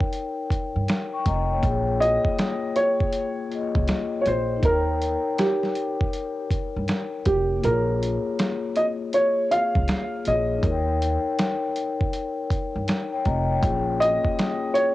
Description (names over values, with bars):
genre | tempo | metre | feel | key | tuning
lo-fi hip hop | 80 BPM | 4/4 | swing 65% on 16ths | Bb dorian | A4 = 440 Hz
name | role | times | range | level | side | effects
vibraphone with soft mallets | accompaniment | 0.0-14.9 s | Bb3 to Db6 | -27 LUFS | left 4 dB | cassette tape, low-pass filter
dusty soul sampler-style drum kit | drums | 0.0-14.9 s | finger snaps, hi-hat, kick drum, snare drum | -26 LUFS | right 1 dB | overdrive, cassette tape
upright bass | bass | 0.8-14.2 s | F1 to G2 | -26 LUFS | right 1 dB | none
felt-muted upright piano | melody | 2.0-14.9 s | G4 to F5 | -23 LUFS | right 1 dB | low-pass filter, cassette tape
room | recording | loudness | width
light reverb, small room ambience | home recording on cassette | -21 LUFS | side -16 dB against mid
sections
0.0-14.9 A section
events
kick muted 7.6-9.1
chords
0.0 Eb7; 1.6 Bbm7; 4.6 Eb7; 7.6 Bbm7; 10.6 Eb7; 13.6 Bbm7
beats
0.13 0.88 | 1.63 2.38 3.13 3.88 | 4.63 5.38 6.13 6.88 | 7.63 8.38 9.13 9.88 | 10.63 11.38 12.13 12.88 | 13.63 14.38